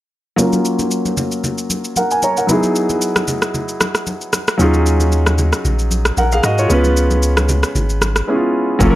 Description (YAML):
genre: amapiano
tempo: 114 BPM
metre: 4/4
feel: swing 55% on 16ths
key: F# major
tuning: A4 = 440 Hz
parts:
  - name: warm concert grand piano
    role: accompaniment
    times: 0.4-9.0 s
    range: F#3 to A#5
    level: -16 LUFS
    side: equal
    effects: low-pass filter
  - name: deep house drum kit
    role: drums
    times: 0.4-8.9 s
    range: kick drum, rim click, shaker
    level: -19 LUFS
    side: equal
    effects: none
  - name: congas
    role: percussion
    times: 0.4-8.2 s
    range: none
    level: -25 LUFS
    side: equal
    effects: none
  - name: punchy sub bass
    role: bass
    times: 4.6-8.2 s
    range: G#1 to G#2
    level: -15 LUFS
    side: equal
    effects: none
  - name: hollow soft pad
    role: sustained chords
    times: 8.8-9.0 s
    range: F#3 to A#4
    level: -22 LUFS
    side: equal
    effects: none
  - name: hollow log drum bass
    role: bass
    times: 8.8-9.0 s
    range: F#1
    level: -14 LUFS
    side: equal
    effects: none
room: digital ambience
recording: dry, gritty hardware recording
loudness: -14 LUFS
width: side -15 dB against mid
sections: 0.4-8.8 A section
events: filter sweep on grand piano 0.4-8.8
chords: 0.4 F#maj7; 2.5 Emaj9; 4.6 D#m11; 6.7 C#7